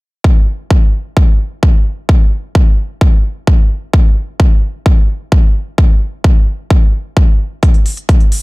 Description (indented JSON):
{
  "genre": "EDM, festival progressive house",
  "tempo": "130 BPM",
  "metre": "4/4",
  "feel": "straight",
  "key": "none",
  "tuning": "none",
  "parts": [
    { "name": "electronic kick drum", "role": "drums", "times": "0.2-8.2 s", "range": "none", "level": "-8 LUFS", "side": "equal", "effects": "none" },
    { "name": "electronic hi-hat", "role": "drums", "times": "7.6-8.4 s", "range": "none", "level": "-24 LUFS", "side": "equal", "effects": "low-pass filter on hats, low-pass filter on room" }
  ],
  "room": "little or no reverb",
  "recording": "dark, warm production",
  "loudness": "-10 LUFS",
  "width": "side -24 dB against mid",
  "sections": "0.2-8.4 A section",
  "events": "none",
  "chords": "none"
}